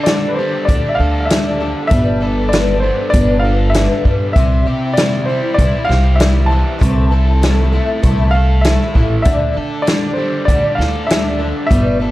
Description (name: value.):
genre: folk rock and heartland rock.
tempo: 98 BPM.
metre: 4/4.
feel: straight.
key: unclear.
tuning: A4 = 440 Hz.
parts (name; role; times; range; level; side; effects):
clear grand piano; melody; 0.0-12.1 s; B4 to A5; -20 LUFS; equal; tape echo.
picked twelve-string acoustic guitar; accompaniment; 0.0-12.1 s; C3 to C5; -22 LUFS; left 3 dB; ensemble chorus.
overdriven electric guitar; riff; 0.0-12.1 s; C3 to A4; -22 LUFS; right 1 dB; none.
upright bass; bass; 0.0-12.1 s; G1 to D3; -16 LUFS; equal; none.
vintage drum kit; drums; 0.1-11.9 s; hi-hat, kick drum, snare drum; -16 LUFS; equal; none.
room: light reverb.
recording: dark, warm production.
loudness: -12 LUFS.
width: side -16 dB against mid.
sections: 0.0-12.1 A section.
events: none.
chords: 0.0 Dsus4; 1.9 Gadd9; 4.4 C; 6.8 Am/C; 9.3 Dsus4.